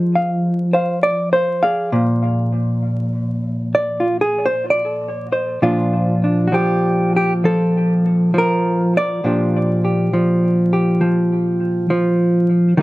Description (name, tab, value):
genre	solo jazz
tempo	67 BPM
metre	4/4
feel	swing 67% on 8ths, rubato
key	Bb major from 5.6 s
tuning	A4 = 440 Hz
part	hollow-body jazz guitar	solo	0.0-12.8 s	Bb2 to F5	-15 LUFS	equal	analog delay
room	moderate studio reverb, RT60 0.5 s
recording	dark, warm production, vinyl crackle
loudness	-15 LUFS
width	side -19 dB against mid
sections	0.0-5.6 A section; 5.6-12.8 B section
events	hollow-body jazz guitar solo 0.0-5.6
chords	0.0 Fm; 1.9 Bbsus2; 5.6 Bbmaj7; 9.3 Bb6